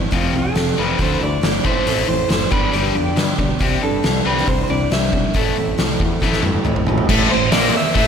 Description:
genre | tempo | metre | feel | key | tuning
quiet-loud alternative rock | 138 BPM | 4/4 | straight | A minor | A4 = 437 Hz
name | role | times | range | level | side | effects
picked steel-string acoustic guitar | arpeggios | 0.0-7.1 s | F2 to A4 | -25 LUFS | right 3 dB | none
biting overdriven guitar | riff | 0.0-8.1 s | F2 to D4 | -22 LUFS | left 7 dB | slapback echo
growling picked electric bass | bass | 0.0-8.1 s | F1 to A2 | -24 LUFS | equal | overdrive
oversized low-tuned drum kit | drums | 0.1-8.1 s | crash cymbal, hi-hat, kick drum, snare drum, toms | -20 LUFS | equal | none
electric guitar through a small old amp | melody | 0.2-8.1 s | F4 to E5 | -23 LUFS | right 3 dB | slapback echo, tape echo
distorted electric guitar | riff | 7.1-8.1 s | A2 to Bb3 | -22 LUFS | right 11 dB | distortion, slapback echo
thick fuzz guitar | riff | 7.1-8.1 s | A2 to Bb3 | -23 LUFS | right 2 dB | distortion, slapback echo
room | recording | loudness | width
moderate lush hall reverb, RT60 1.8 s, small room ambience | big arena sound | -15 LUFS | side -7 dB against mid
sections
0.0-7.1 A section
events
drum fill 6.2-7.1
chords
0.1 F; 1.0 Dmadd9; 1.7 Am; 2.5 G; 3.6 Cadd9; 5.4 Am

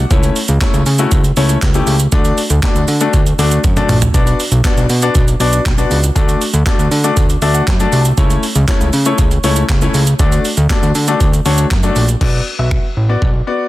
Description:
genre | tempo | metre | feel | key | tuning
dance-pop | 119 BPM | 4/4 | straight | D major | A4 = 440 Hz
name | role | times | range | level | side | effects
clear grand piano | accompaniment | 0.0-13.7 s | A3 to A5 | -17 LUFS | left 3 dB | sidechain pumping
fat analog bass | bass | 0.0-13.4 s | A1 to D3 | -14 LUFS | equal | sidechain pumping
breakbeat sampler-style drum kit | drums | 0.1-13.3 s | crash cymbal, finger snaps, handclaps, hi-hat, kick drum, shaker, snare drum, toms | -15 LUFS | equal | none
room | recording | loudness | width
little or no reverb | dense, heavily limited modern master | -11 LUFS | side -16 dB against mid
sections
0.0-12.2 A section; 12.2-13.7 B section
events
drop 0.0-12.2; drum fill 3.6-4.1; grand piano fill 7.2-8.2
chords
0.1 A/C#; 2.1 D; 4.1 Bm; 6.2 D; 8.2 A/C#; 10.2 D; 12.2 Bm

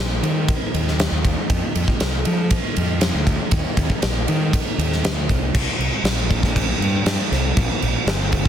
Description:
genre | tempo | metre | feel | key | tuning
quiet-loud alternative rock | 118 BPM | 4/4 | straight | C minor | A4 = 440 Hz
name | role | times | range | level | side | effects
fuzz fingered electric bass | bass | 0.0-8.5 s | G1 to F3 | -22 LUFS | equal | overdrive
huge arena drum kit | drums | 0.2-8.5 s | crash cymbal, kick drum, ride cymbal, snare drum | -19 LUFS | equal | soft clipping on kick
room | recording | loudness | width
little or no reverb | dense, heavily limited modern master | -18 LUFS | side -9 dB against mid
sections
0.0-5.5 A section; 5.5-8.5 B section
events
none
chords
none

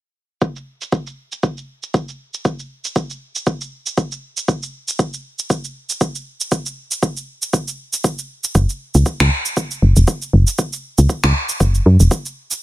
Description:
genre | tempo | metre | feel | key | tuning
afro house | 118 BPM | 4/4 | swing 56% on 16ths | unclear | A4 = 440 Hz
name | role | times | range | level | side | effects
electronic kick drum | drums | 0.4-12.2 s | none | -19 LUFS | equal | overdrive, high-pass filter on kick
electronic shaker and finger snaps | drums | 0.4-12.6 s | none | -23 LUFS | right 2 dB | overdrive, low-pass filter on perc, low-pass filter on snare
woody FM bass | bass | 8.6-12.1 s | E1 to F#2 | -11 LUFS | equal | sidechain pumping
room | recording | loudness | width
little or no reverb | none | -17 LUFS | side -16 dB against mid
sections
0.4-12.6 A section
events
none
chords
none

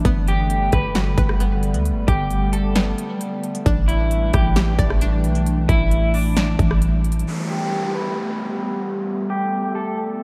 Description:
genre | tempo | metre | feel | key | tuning
hip hop, atmospheric cloud-rap | 133 BPM | 4/4 | half-time | G major | A4 = 440 Hz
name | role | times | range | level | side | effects
warbly tape-like pad | sustained chords | 0.0-10.2 s | D3 to A4 | -26 LUFS | equal | chorus, built-in reverb, sidechain pumping, low-pass filter
string-like resonator pluck | arpeggios | 0.0-7.3 s | B3 to D5 | -36 LUFS | equal | chorus, phaser, analog delay
soft 808-style bass | bass | 0.0-7.2 s | G1 to D2 | -22 LUFS | equal | none
big-room dance drum kit | drums | 0.1-7.3 s | hi-hat, kick drum, rim click, snare drum | -25 LUFS | equal | overdrive
electric guitar at the edge of break-up | melody | 0.3-10.0 s | D4 to B4 | -29 LUFS | equal | lush chorus, low-pass filter, analog delay
downlifter | sound effects | 7.3-10.2 s | none | -35 LUFS | equal | none
room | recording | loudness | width
wet cathedral reverb, RT60 5.0 s | dreamy mix soaked in reverb | -20 LUFS | mono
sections
0.0-7.3 A section; 7.3-10.2 B section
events
filter sweep 7.3-10.2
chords
0.1 Gmaj9; 3.7 A7sus4; 7.3 Gadd9

